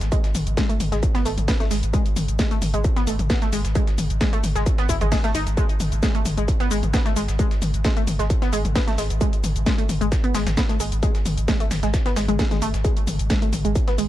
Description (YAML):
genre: driving peak-time techno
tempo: 132 BPM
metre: 4/4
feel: straight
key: G# phrygian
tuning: A4 = 441 Hz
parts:
  - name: saturated sub bass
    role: bass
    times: 0.0-14.1 s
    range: G#1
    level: -25 LUFS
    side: equal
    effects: tube saturation, sidechain pumping, low-pass filter
  - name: dusty soul sampler-style drum kit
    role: drums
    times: 0.0-14.1 s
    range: hi-hat, snare drum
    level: -36 LUFS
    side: right 1 dB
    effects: sidechain pumping on hats, high-pass filter on hats, high-pass filter on snare, high-pass filter on room
  - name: techno drum kit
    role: drums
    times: 0.0-14.1 s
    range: hi-hat, shaker, snare drum, toms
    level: -27 LUFS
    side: left 1 dB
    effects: none
  - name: warbly dusty pluck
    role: riff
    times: 0.1-14.0 s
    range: G#3 to E4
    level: -26 LUFS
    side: equal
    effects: chorus, overdrive, sidechain pumping, digital delay
  - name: electronic kick drum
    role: drums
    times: 0.1-13.9 s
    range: none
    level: -22 LUFS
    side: equal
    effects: distortion
room: digital ambience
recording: dark, warm production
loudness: -19 LUFS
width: side -14 dB against mid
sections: 0.0-14.1 A section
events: none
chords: 0.0 G#5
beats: | 0.12 0.57 1.03 1.48 | 1.94 2.39 2.85 3.30 | 3.75 4.21 4.66 5.12 | 5.57 6.03 6.48 6.94 | 7.39 7.85 8.30 8.76 | 9.21 9.66 10.12 10.57 | 11.03 11.48 11.94 12.39 | 12.85 13.30 13.76